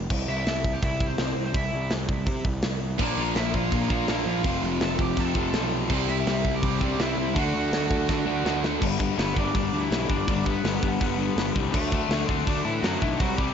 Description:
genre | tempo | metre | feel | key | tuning
punk rock | 165 BPM | 4/4 | straight | unclear | A4 = 440 Hz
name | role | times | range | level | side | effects
fuzz picked electric bass | bass | 0.0-13.5 s | F1 to D3 | -29 LUFS | right 1 dB | overdrive
tight metal drum kit | drums | 0.1-13.5 s | crash cymbal, hi-hat, kick drum, snare drum | -28 LUFS | right 1 dB | none
cranked stack guitar | melody | 0.3-13.5 s | E3 to A5 | -31 LUFS | right 1 dB | overdrive, digital delay
distorted electric guitar | riff | 3.0-13.5 s | F2 to D4 | -28 LUFS | left 11 dB | distortion
tight distorted guitar | riff | 3.0-8.8 s | F2 to D4 | -30 LUFS | right 19 dB | distortion
room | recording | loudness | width
little or no reverb | nothing above 7.7 kHz | -23 LUFS | side -8 dB against mid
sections
0.0-8.8 A section; 8.8-13.5 B section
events
drum fill 8.1-8.8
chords
0.1 C; 3.0 Bb; 4.4 F; 5.9 C; 7.4 D; 8.8 G; 11.7 D

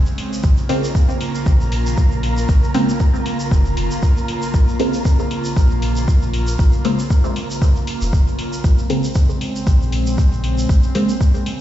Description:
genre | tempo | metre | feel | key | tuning
dub techno | 117 BPM | 4/4 | swing 55% on 16ths | Bb minor | A4 = 440 Hz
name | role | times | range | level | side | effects
airy breathy pad | sustained chords | 0.0-11.6 s | Db3 to F4 | -25 LUFS | right 1 dB | chorus, sidechain pumping
pure sine sub bass | bass | 0.0-10.8 s | F1 to Bb1 | -19 LUFS | equal | sidechain pumping
tube shaker | percussion | 0.1-11.4 s | none | -34 LUFS | right 2 dB | none
electronic hi-hat | drums | 0.2-11.6 s | none | -32 LUFS | left 2 dB | overdrive
electronic kick drum | drums | 0.4-11.3 s | none | -15 LUFS | equal | overdrive
wind-like tuned noise texture | texture | 0.8-8.7 s | Bb3 to Bb4 | -29 LUFS | left 1 dB | built-in reverb, sidechain pumping
filtered dub chord stab | stabs | 0.7-11.1 s | Db3 to C4 | -22 LUFS | equal | phaser, sidechain pumping, dub echo
room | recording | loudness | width
digital ambience | played on a big sound system in a bare room, stone room reverb, nothing above 7.8 kHz | -15 LUFS | side -12 dB against mid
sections
0.0-8.6 A section; 8.6-11.6 A section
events
none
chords
0.0 Bbm9

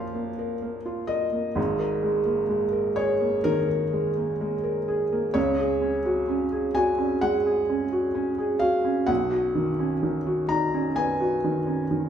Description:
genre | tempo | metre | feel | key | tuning
neoclassical minimalist piano | 64 BPM | 4/4 | rubato | G# dorian | A4 = 438 Hz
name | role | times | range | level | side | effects
felt-muted upright piano | solo | 0.0-12.1 s | G#1 to A#5 | -23 LUFS | equal | none
room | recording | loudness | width
wet large studio reverb, RT60 1.2 s | band playing live in one room | -22 LUFS | side -9 dB against mid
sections
0.0-12.1 A section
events
none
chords
0.0 A#m; 1.6 G#sus2; 5.4 C#sus4; 9.1 Badd9

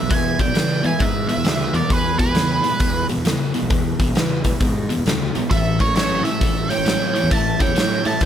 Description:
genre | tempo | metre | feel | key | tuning
blues rock power trio and southern rock | 133 BPM | 4/4 | swing 64% on 8ths | E mixolydian | A4 = 439 Hz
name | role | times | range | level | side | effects
octave-fuzz lead guitar | melody | 0.0-8.3 s | B4 to A5 | -23 LUFS | right 3 dB | wah, distortion
lead guitar through a small cranked amp | second line | 0.0-8.3 s | G#4 to E5 | -28 LUFS | right 4 dB | overdrive
distorted electric guitar | riff | 0.0-8.3 s | E2 to F#3 | -23 LUFS | equal | overdrive
fuzz fingered electric bass | bass | 0.0-8.3 s | A1 to E3 | -24 LUFS | left 1 dB | overdrive
huge arena drum kit | drums | 0.1-8.3 s | hi-hat, kick drum, snare drum | -21 LUFS | equal | none
room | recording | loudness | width
light reverb | none | -17 LUFS | side -9 dB against mid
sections
0.0-8.3 A section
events
none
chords
0.0 E; 5.5 A7

